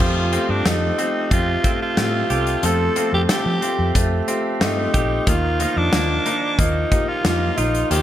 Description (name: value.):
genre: 1980s-style pop.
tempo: 91 BPM.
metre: 4/4.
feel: straight.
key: F mixolydian.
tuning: A4 = 439 Hz.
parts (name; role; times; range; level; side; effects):
raspy alto saxophone; melody; 0.0-8.0 s; D4 to A4; -23 LUFS; equal; none.
clear baby grand piano; accompaniment; 0.0-8.0 s; F3 to A4; -24 LUFS; left 2 dB; none.
direct-recorded clean electric guitar; riff; 0.0-8.0 s; Eb3 to G4; -27 LUFS; right 5 dB; lush chorus.
vintage muted fingered electric bass; bass; 0.0-8.0 s; Bb1 to F3; -22 LUFS; equal; none.
modern studio drum kit; drums; 0.0-8.0 s; crash cymbal, hi-hat, kick drum, snare drum; -22 LUFS; equal; gated reverb.
room: light reverb, small room ambience.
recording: none.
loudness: -17 LUFS.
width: side -11 dB against mid.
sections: 0.0-8.0 A section.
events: none.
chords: 0.0 Fadd9; 5.3 Ebsus2.